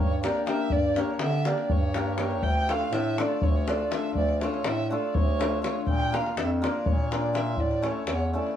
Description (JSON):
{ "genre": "balkan folk, Balkan wedding band", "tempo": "244 BPM (eighths)", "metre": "7/8", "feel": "straight", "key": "unclear", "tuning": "A4 = 440 Hz", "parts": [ { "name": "dark violin", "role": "melody", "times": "0.0-8.6 s", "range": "C#5 to G5", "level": "-30 LUFS", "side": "right 3 dB", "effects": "plate reverb" }, { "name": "warm bass clarinet", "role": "bass", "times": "0.0-8.4 s", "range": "D2 to D3", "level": "-30 LUFS", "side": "equal", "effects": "none" }, { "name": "hammered dulcimer", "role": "accompaniment", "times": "0.2-8.5 s", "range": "A3 to Bb4", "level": "-30 LUFS", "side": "left 4 dB", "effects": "none" }, { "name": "davul", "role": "percussion", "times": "0.2-8.5 s", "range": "none", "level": "-28 LUFS", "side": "left 1 dB", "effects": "none" } ], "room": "wet studio reverb, RT60 0.6 s", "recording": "heard from further back in the room", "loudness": "-24 LUFS", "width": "side -10 dB against mid", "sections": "0.0-8.6 A section", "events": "none", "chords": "0.0 Gm; 2.4 Dm; 5.9 Bb; 7.6 A" }